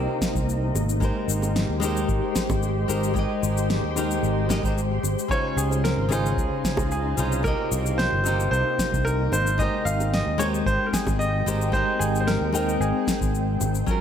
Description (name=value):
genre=sunset chillout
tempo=112 BPM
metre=4/4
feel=straight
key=Ab major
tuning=A4 = 436 Hz
part: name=flamenco guitar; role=accompaniment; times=0.0-14.0 s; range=C3 to G5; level=-28 LUFS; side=left 1 dB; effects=auto-pan, tape echo
part: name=shimmering ambient pad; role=sustained chords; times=0.0-14.0 s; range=C3 to G5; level=-30 LUFS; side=left 3 dB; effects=chorus, built-in reverb
part: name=sustaining fretless electric bass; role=bass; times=0.0-13.8 s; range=G1 to Eb2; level=-26 LUFS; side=equal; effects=none
part: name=electronic kick drum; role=drums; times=0.2-14.0 s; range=none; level=-28 LUFS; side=equal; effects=none
part: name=electronic snare drum and cabasa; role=drums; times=0.2-14.0 s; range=none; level=-30 LUFS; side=left 1 dB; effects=overdrive
part: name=bongos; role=percussion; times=0.8-13.7 s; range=none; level=-36 LUFS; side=right 2 dB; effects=none
part: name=bright baby grand piano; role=melody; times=5.3-13.3 s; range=Ab4 to F5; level=-27 LUFS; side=equal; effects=tape echo
room=moderate lush hall reverb, RT60 1.6 s, studio ambience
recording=big arena sound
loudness=-21 LUFS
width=side -8 dB against mid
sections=0.0-13.9 A section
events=none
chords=0.0 Cm7; 0.8 Abmaj7; 5.3 Dbmaj9; 7.5 Cm7; 9.3 Abmaj7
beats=0.48 | 1.02 1.56 2.09 2.63 | 3.16 3.70 4.24 4.77 | 5.31 5.84 6.38 6.91 | 7.45 7.99 8.52 9.06 | 9.59 10.13 10.66 11.20 | 11.73 12.27 12.81 13.34 | 13.88